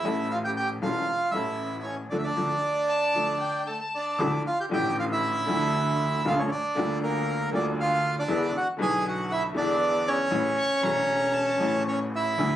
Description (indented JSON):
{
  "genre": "tango",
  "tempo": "117 BPM",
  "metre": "4/4",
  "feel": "rubato",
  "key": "D harmonic minor",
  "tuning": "A4 = 439 Hz",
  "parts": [
    { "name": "bandoneon", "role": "melody", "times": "0.0-12.6 s", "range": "A3 to G#5", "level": "-26 LUFS", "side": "right 2 dB", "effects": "none" },
    { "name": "clear upright piano", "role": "accompaniment", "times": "0.0-12.6 s", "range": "E1 to A4", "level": "-30 LUFS", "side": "left 4 dB", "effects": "none" },
    { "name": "clear double bass", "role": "bass", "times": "0.0-12.6 s", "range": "E1 to E2", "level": "-32 LUFS", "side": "right 1 dB", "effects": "none" },
    { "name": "warm violin", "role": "second line", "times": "2.9-4.2, 10.6-11.7 s", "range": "G5 to C#6", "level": "-31 LUFS", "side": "left 4 dB", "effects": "none" }
  ],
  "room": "light reverb",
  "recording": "recorded on a phone in the room, club reverb",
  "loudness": "-24 LUFS",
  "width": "side -12 dB against mid",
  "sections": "0.0-4.2 A section; 4.2-12.6 B section",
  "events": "band accent 2.1-4.2",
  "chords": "0.1 A; 2.1 Dm; 4.2 Dmadd9; 6.3 Bb6/D; 8.3 E7; 10.3 A",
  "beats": "| 0.06 0.57 1.08 1.60 | 2.11 2.63 3.15 3.67 | 4.19 4.71 5.23 5.74 | 6.25 6.76 7.27 7.78 | 8.29 8.80 9.30 9.81 | 10.32 10.84 11.35 11.87 | 12.39"
}